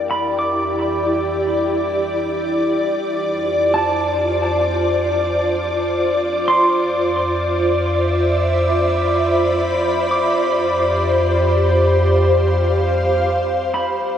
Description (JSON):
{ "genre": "ambient", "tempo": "free time", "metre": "none", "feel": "none", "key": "unclear", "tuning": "A4 = 440 Hz", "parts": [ { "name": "ethereal airy pad", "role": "sustained chords", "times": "0.0-14.2 s", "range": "E4 to B5", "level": "-17 LUFS", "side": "equal", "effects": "ensemble chorus, built-in reverb" }, { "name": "deep rumbling drone", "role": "bass", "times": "0.1-14.2 s", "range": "F2", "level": "-23 LUFS", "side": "equal", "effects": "built-in reverb" }, { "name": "wind-like tuned noise texture", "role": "texture", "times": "1.0-13.8 s", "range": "D6", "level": "-29 LUFS", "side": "equal", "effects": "built-in reverb" }, { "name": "mellow electric guitar", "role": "arpeggios", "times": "0.1-14.2 s", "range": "A5 to D6", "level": "-24 LUFS", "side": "right 2 dB", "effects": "spring reverb, tape echo" } ], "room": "wet cathedral reverb, RT60 6.3 s", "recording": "none", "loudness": "-15 LUFS", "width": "side -9 dB against mid", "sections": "0.0-13.7 A section", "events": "fade-in on synth drone 0.0-13.7; fade-in on synth texture 0.0-13.7", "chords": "0.0 Em7/F; 2.8 Dm7/F; 6.5 Cmaj7/F; 10.1 Fsus2", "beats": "free time" }